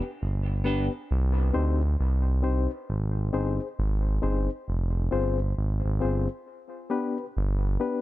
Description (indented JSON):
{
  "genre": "reggae",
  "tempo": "67 BPM",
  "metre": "4/4",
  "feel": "swing 61% on 16ths",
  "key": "C harmonic minor",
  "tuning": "A4 = 438 Hz",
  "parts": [
    { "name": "semi-hollow electric guitar", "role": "accompaniment", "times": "0.0-0.9 s", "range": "B3 to G4", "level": "-36 LUFS", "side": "right 3 dB", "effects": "dub echo" },
    { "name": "reed electric piano", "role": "stabs", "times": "0.0-8.0 s", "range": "B3 to C5", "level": "-31 LUFS", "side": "left 5 dB", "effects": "fast tremolo, dub echo" },
    { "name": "smooth synth bass", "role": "bass", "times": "0.2-7.8 s", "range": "F1 to D2", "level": "-25 LUFS", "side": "equal", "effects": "none" }
  ],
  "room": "digital ambience",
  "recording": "dark, warm production",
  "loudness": "-24 LUFS",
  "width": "side -16 dB against mid",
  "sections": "0.0-1.1 A section; 1.1-8.0 B section",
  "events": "none",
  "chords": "0.0 G; 1.1 Cm; 2.9 Ab; 4.7 Fm; 6.5 G"
}